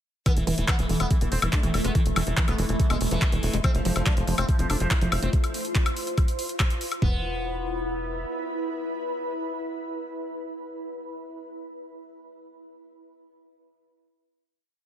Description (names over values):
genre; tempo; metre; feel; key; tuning
psychedelic trance; 142 BPM; 4/4; straight; unclear; A4 = 436 Hz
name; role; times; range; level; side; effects
sitar; melody; 0.3-11.6 s; E3 to E4; -34 LUFS; left 1 dB; phaser, sidechain pumping, dub echo
pulsing gated texture; sustained chords; 0.3-5.3 s; A3 to A4; -34 LUFS; equal; chorus, built-in reverb, sidechain pumping
woody wave-folded pluck; riff; 0.3-7.2 s; D3 to C4; -33 LUFS; right 1 dB; chorus, auto-pan, sidechain pumping, dub echo
drum and bass drum kit; drums; 0.3-7.1 s; kick drum, toms; -23 LUFS; equal; overdrive, studio ambience
drum and bass drum kit; drums; 0.3-7.0 s; handclaps, hi-hat, woodblock; -30 LUFS; left 2 dB; overdrive, studio ambience
ethereal airy pad; texture; 1.7-11.2 s; E4 to C6; -34 LUFS; equal; ensemble chorus, built-in reverb, sidechain pumping
tight sequencer bass; bass; 0.4-8.2 s; E1 to F1; -27 LUFS; equal; none
room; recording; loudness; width
digital ambience; none; -23 LUFS; side -10 dB against mid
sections
0.3-7.0 groove; 7.0-10.4 final chord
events
fade-in on ambient pad 0.3-7.0; filter sweep on synth arpeggio sound 0.3-5.3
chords
0.3 E5; 3.6 F5; 7.0 E5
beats
| 0.26 0.68 1.11 1.53 | 1.95 2.37 2.80 3.22 | 3.64 4.06 4.49 4.91 | 5.33 5.75 6.18 6.60 | 7.02 7.44 7.87 8.29 | 8.71 9.13 9.56 9.98